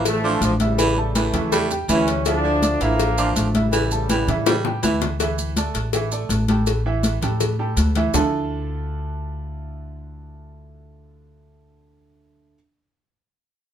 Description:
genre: latin, salsa.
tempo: 163 BPM.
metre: 4/4.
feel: straight.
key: D harmonic minor.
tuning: A4 = 440 Hz.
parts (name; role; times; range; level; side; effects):
clear trombone section; melody; 0.0-4.8 s; C#3 to D4; -24 LUFS; left 1 dB; none.
raspy baritone saxophone; second line; 0.0-5.0 s; D3 to G3; -24 LUFS; right 2 dB; none.
clear baby grand piano; accompaniment; 0.0-12.5 s; D3 to E6; -26 LUFS; right 4 dB; none.
upright bass; bass; 0.0-12.5 s; A1 to A2; -24 LUFS; equal; none.
congas; percussion; 0.1-8.2 s; none; -24 LUFS; left 2 dB; none.
cowbell and bongos; percussion; 0.1-8.2 s; none; -25 LUFS; left 6 dB; none.
maracas; percussion; 0.1-8.2 s; none; -31 LUFS; right 4 dB; none.
room: moderate studio reverb, RT60 0.6 s.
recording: minimal, uncompressed stereo recording.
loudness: -18 LUFS.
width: side -9 dB against mid.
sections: 0.0-5.2 A section; 5.2-8.1 B section; 8.1-11.1 C section.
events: drum fill 4.5-5.2.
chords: 0.0 Dmadd9; 0.8 A7; 2.3 Dmadd9; 3.7 A7; 8.1 Dmadd9.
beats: 0.05 0.42 | 0.79 1.15 1.52 1.89 | 2.26 2.62 2.99 3.36 | 3.73 4.09 4.46 4.83 | 5.20 5.57 5.93 6.30 | 6.67 7.04 7.40 7.77 | 8.14 8.51 8.88 9.24 | 9.61 9.98 10.35 10.71.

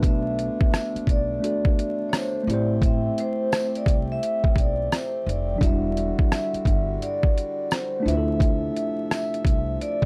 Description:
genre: lo-fi hip hop.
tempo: 86 BPM.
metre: 4/4.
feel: swing 63% on 16ths.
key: E minor.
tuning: A4 = 439 Hz.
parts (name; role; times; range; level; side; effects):
mellow tine electric piano; accompaniment; 0.0-10.1 s; F#3 to D5; -31 LUFS; equal; cassette tape.
pedal harmonium; sustained chords; 0.0-10.1 s; C3 to E5; -39 LUFS; equal; plate reverb.
upright bass; bass; 0.0-9.7 s; E1 to D2; -31 LUFS; equal; none.
boom bap sampler-style drum kit; drums; 0.0-10.1 s; hi-hat, kick drum, rim click; -24 LUFS; equal; none.
vibraphone with medium mallets; melody; 0.1-10.1 s; C5 to E5; -30 LUFS; equal; plate reverb.
tambourine; percussion; 0.7-9.3 s; none; -47 LUFS; equal; none.
room: little or no reverb.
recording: dry, gritty hardware recording, vinyl crackle.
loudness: -24 LUFS.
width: mono.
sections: 0.0-10.1 A section.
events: none.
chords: 0.0 Bm7; 2.5 Am7; 5.6 Em9; 8.1 Dm9.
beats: | 0.03 0.73 1.42 2.12 | 2.82 3.52 4.21 4.91 | 5.61 6.31 7.00 7.70 | 8.40 9.10 9.80.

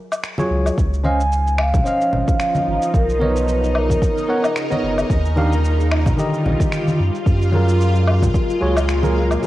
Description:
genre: sunset chillout.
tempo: 111 BPM.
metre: 4/4.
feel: swing 56% on 16ths.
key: unclear.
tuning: A4 = 440 Hz.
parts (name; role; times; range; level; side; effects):
electronic woodblock, shaker and finger snaps; drums; 0.1-9.5 s; none; -26 LUFS; left 1 dB; overdrive, cassette tape.
bell-like tine electric piano; accompaniment; 0.4-9.5 s; D3 to Gb5; -22 LUFS; right 1 dB; auto-pan, low-pass filter, cassette tape, analog delay.
congas; percussion; 0.4-9.5 s; none; -26 LUFS; left 1 dB; none.
warm sub bass; bass; 0.5-9.4 s; Gb1 to Gb2; -18 LUFS; equal; none.
shimmering ambient pad; sustained chords; 1.5-9.5 s; Bb2 to Bb4; -24 LUFS; equal; chorus, built-in reverb, phaser, cassette tape.
electronic kick drum; drums; 0.8-8.5 s; none; -18 LUFS; equal; cassette tape.
vibraphone with medium mallets; melody; 1.1-4.5, 9.4-9.5 s; Bb4 to Ab5; -21 LUFS; equal; cassette tape.
room: light reverb.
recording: home recording on cassette.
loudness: -15 LUFS.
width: side -15 dB against mid.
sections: 0.0-9.4 A section.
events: none.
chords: 0.0 Gbmaj7sus2; 0.8 Dbmaj9; 2.9 Cbmaj9; 5.1 Ebmaj9; 7.0 Gbmaj9.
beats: 0.24 | 0.78 1.32 1.86 2.40 | 2.94 3.48 4.02 4.56 | 5.10 5.64 6.18 6.72 | 7.26 7.80 8.35 8.88 | 9.43.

